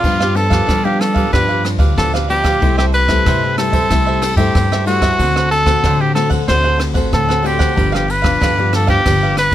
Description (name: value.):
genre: samba and choro.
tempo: 93 BPM.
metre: 4/4.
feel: straight.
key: unclear.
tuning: A4 = 439 Hz.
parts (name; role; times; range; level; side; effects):
clear trumpet; melody; 0.0-9.5 s; F4 to C5; -16 LUFS; equal; none.
cavaquinho; accompaniment; 0.0-9.4 s; D4 to F#5; -23 LUFS; right 6 dB; none.
nylon-string guitar; accompaniment; 0.0-9.5 s; G2 to F#4; -22 LUFS; left 5 dB; none.
upright bass; bass; 0.0-9.5 s; G1 to G3; -18 LUFS; equal; none.
jazz brush drum kit; drums; 0.0-9.5 s; kick drum, ride cymbal, rim click; -19 LUFS; equal; none.
room: light reverb.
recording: close, detailed microphones.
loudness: -12 LUFS.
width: side -12 dB against mid.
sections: 0.0-9.5 A section.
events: none.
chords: 0.0 G7; 2.6 C6; 5.2 D7; 7.8 G7.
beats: | 0.05 0.69 1.34 1.98 | 2.62 3.27 3.91 4.56 | 5.20 5.84 6.49 7.13 | 7.78 8.42 9.06.